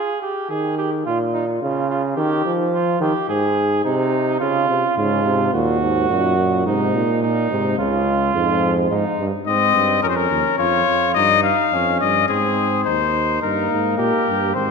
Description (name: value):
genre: classical, imitative canzona for brass ensemble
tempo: 107 BPM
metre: 4/4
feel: straight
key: unclear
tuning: A4 = 437 Hz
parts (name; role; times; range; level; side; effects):
- clear flugelhorn; second line; 0.0-14.7 s; C4 to Ab4; -21 LUFS; right 5 dB; none
- clear trombone; accompaniment; 0.5-8.9, 13.4-14.7 s; Ab2 to Bb3; -22 LUFS; equal; none
- warm bass trombone; bass; 5.0-14.7 s; Db2 to Bb2; -22 LUFS; equal; none
- warm trumpet; melody; 9.5-14.7 s; Ab4 to F5; -18 LUFS; left 10 dB; none
room: wet concert hall reverb, RT60 1.8 s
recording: none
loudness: -16 LUFS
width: side -5 dB against mid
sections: 0.0-13.4 A section; 13.4-14.7 B section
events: none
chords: 0.0 Ab5; 1.1 Bbm; 2.2 Eb; 3.3 Ab; 4.4 Db; 5.5 Ebm; 6.7 Ab; 7.8 Db; 8.9 Ab; 10.0 Bbm; 11.2 Eb/G; 12.3 Ab; 13.4 Eb/G